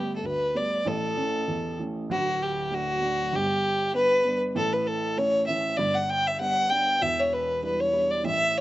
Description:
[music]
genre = celtic folk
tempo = 195 BPM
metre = 4/4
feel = swing 53% on 8ths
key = A mixolydian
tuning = A4 = 443 Hz
[part]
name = dark fiddle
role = melody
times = 0.0-8.6 s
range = F#4 to G5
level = -24 LUFS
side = equal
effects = slapback echo
[part]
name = dark upright piano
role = accompaniment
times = 0.0-8.6 s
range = D1 to E4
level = -31 LUFS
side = right 2 dB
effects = slapback echo
[sound]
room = little or no reverb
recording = recorded outdoors, with no room sound, nothing above 8.0 kHz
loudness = -23 LUFS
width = side -16 dB against mid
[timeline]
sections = 0.0-2.1 A section; 2.1-8.6 A section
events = none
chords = 0.0 Gadd9; 0.9 A; 2.1 D; 3.3 G; 4.6 A; 5.8 G; 7.0 Em7

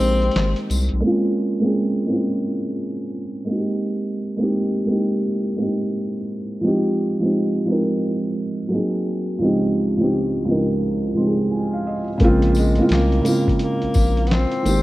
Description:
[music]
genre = lo-fi hip hop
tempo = 86 BPM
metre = 4/4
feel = swing 66% on 16ths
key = unclear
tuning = A4 = 440 Hz
[part]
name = breathy tenor saxophone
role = melody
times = 0.0-0.7, 12.6-14.8 s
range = Ab3 to C4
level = -24 LUFS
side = left 2 dB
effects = low-pass filter
[part]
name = felt-muted upright piano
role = accompaniment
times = 0.0-14.8 s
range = Db2 to C6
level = -19 LUFS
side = right 1 dB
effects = cassette tape, low-pass filter
[part]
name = saturated sub bass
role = bass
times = 0.0-1.0, 12.2-14.8 s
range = Ab1 to C2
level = -19 LUFS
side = equal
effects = none
[part]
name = lo-fi sampler-style drum kit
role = drums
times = 0.0-1.0, 12.2-14.8 s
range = handclaps, hi-hat, kick drum, snare drum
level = -22 LUFS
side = equal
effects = none
[part]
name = tambourine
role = percussion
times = 0.7-0.9, 12.5-14.8 s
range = none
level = -35 LUFS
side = left 4 dB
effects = none
[sound]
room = light reverb, studio ambience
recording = rough home demo mix, cassette tape, low-pass filter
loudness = -18 LUFS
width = side -17 dB against mid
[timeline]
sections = 0.0-1.0 A section; 1.0-12.2 B section; 12.2-14.8 A section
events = break 0.0-1.0; filter sweep 1.0-12.2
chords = 0.0 Abmaj9; 1.0 Bbm9; 3.5 Abmaj7; 6.6 Fm9; 8.7 Ab7; 9.4 Dbmaj9#11; 12.2 Bbm9

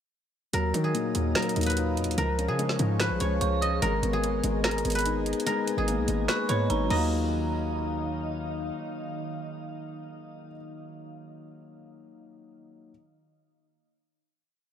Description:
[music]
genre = hip hop, trap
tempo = 146 BPM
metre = 4/4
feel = half-time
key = Eb minor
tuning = A4 = 440 Hz
[part]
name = guzheng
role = melody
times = 0.5-8.7 s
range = Ab4 to Eb5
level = -30 LUFS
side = right 1 dB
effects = none
[part]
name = dark grand piano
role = accompaniment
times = 0.5-12.9 s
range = Bb2 to F4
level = -31 LUFS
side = left 4 dB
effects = none
[part]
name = glassy FM pad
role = sustained chords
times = 0.5-10.5 s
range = Eb3 to Eb6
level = -38 LUFS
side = right 1 dB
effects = ensemble chorus, built-in reverb
[part]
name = hard-hitting 808-style bass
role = bass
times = 0.5-8.7 s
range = Ab1 to Eb3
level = -30 LUFS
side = right 1 dB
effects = none
[part]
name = trap drum kit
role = drums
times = 0.5-7.0 s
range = crash cymbal, finger snaps, hi-hat, snare drum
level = -32 LUFS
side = right 2 dB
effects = none
[part]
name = dark detuned synth bell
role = second line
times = 3.4-3.8, 6.3-8.3 s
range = Bb5 to Eb6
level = -36 LUFS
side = right 5 dB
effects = chorus, phaser, tape echo
[sound]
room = light reverb, digital ambience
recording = none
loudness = -25 LUFS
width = side -9 dB against mid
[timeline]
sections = 0.5-7.1 hook; 7.1-10.4 final hit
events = none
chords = 0.5 Ebmadd9; 2.2 Db; 3.8 Abmadd9; 6.9 Ebmadd9

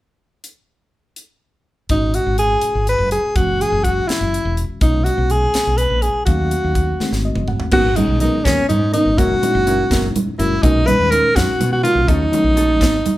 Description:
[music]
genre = electric jazz fusion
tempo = 82 BPM (dotted quarters)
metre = 6/8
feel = straight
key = unclear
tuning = A4 = 440 Hz
[part]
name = tight funk drum kit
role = drums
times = 0.4-13.2 s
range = crash cymbal, hi-hat, kick drum, snare drum, toms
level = -21 LUFS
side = equal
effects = none
[part]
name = bright alto saxophone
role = melody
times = 1.9-13.2 s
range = C#4 to B4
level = -17 LUFS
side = equal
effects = none
[part]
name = reed electric piano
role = accompaniment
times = 1.9-12.8 s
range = A#2 to F#5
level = -24 LUFS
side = left 2 dB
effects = fast tremolo
[part]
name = woody fretless electric bass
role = bass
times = 1.9-13.0 s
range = E1 to B2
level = -20 LUFS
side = equal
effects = none
[part]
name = mellow electric guitar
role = stabs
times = 7.7-13.0 s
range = F#3 to A#4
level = -26 LUFS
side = left 1 dB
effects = none
[part]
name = congas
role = percussion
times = 7.7-13.2 s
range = none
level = -24 LUFS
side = right 3 dB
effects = none
[sound]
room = light reverb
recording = band playing live in one room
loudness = -14 LUFS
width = side -16 dB against mid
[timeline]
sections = 0.4-1.9 A section; 1.9-7.7 B section; 7.7-13.2 C section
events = drum fill 7.0-7.7; reed electric piano fill 7.0-7.7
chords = 0.4 N.C.; 1.9 G#sus2; 3.4 F#7; 4.8 Bmaj13; 6.3 D#m7b5; 7.0 G#7b9; 7.7 G#m9; 9.2 F#7; 10.6 Bmaj13; 12.1 D#m7b5

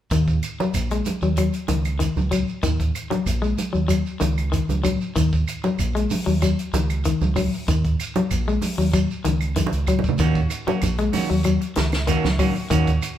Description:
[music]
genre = afrobeat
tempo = 95 BPM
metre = 4/4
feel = straight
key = Eb minor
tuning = A4 = 444 Hz
[part]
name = electric guitar at the edge of break-up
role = arpeggios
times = 0.1-12.9 s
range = Eb3 to Ab3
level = -24 LUFS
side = left 5 dB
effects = none
[part]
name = fingered electric bass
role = bass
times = 0.1-13.0 s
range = Bb1 to Eb2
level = -24 LUFS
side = right 1 dB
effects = none
[part]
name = compact cocktail drum kit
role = drums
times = 0.1-13.2 s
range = hi-hat, kick drum, snare drum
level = -29 LUFS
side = right 1 dB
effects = none
[part]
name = shekere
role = percussion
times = 0.1-13.2 s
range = none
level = -31 LUFS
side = right 3 dB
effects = none
[part]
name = claves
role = percussion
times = 0.4-13.2 s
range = none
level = -38 LUFS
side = right 6 dB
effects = none
[part]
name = congas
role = percussion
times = 0.6-12.4 s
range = none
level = -28 LUFS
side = right 4 dB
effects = none
[part]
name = clean electric guitar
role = stabs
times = 10.2-13.1 s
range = Eb3 to Gb4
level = -26 LUFS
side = right 7 dB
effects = spring reverb
[sound]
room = moderate large studio reverb, RT60 1.2 s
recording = band playing live in one room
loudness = -19 LUFS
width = side -11 dB against mid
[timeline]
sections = 0.1-13.2 A section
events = drum fill 9.6-10.2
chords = 0.1 Ebm7

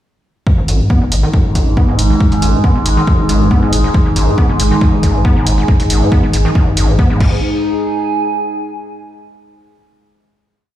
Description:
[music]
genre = driving peak-time techno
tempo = 138 BPM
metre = 4/4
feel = straight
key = unclear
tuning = A4 = 441 Hz
[part]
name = overdriven acid bass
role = riff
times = 0.5-7.4 s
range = G#1 to B3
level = -18 LUFS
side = equal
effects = distortion, analog chorus, sidechain pumping, dub echo
[part]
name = overtone-sweeping drone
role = drone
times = 1.2-7.5 s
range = G#2 to G#3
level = -21 LUFS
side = right 1 dB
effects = chorus, built-in reverb, sidechain pumping
[part]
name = electronic kick drum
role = drums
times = 0.5-7.3 s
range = none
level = -12 LUFS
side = equal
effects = none
[part]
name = warbly tape-like pad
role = texture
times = 0.8-9.1 s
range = D#4 to G#5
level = -20 LUFS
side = equal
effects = chorus, built-in reverb, sidechain pumping
[part]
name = saturated sub bass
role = bass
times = 0.6-7.4 s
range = G#1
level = -16 LUFS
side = equal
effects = overdrive, sidechain pumping, low-pass filter
[part]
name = punchy analog drum machine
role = drums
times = 0.7-7.3 s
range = crash cymbal, hi-hat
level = -22 LUFS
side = equal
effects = sidechain pumping on hats, sidechain pumping on cymbals
[sound]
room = light reverb, digital ambience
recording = played on a big sound system in a bare room, stone room reverb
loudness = -10 LUFS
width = side -12 dB against mid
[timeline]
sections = 0.5-7.4 groove; 7.4-9.2 final note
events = filter sweep on acid bass 0.5-7.4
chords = 0.5 G#5

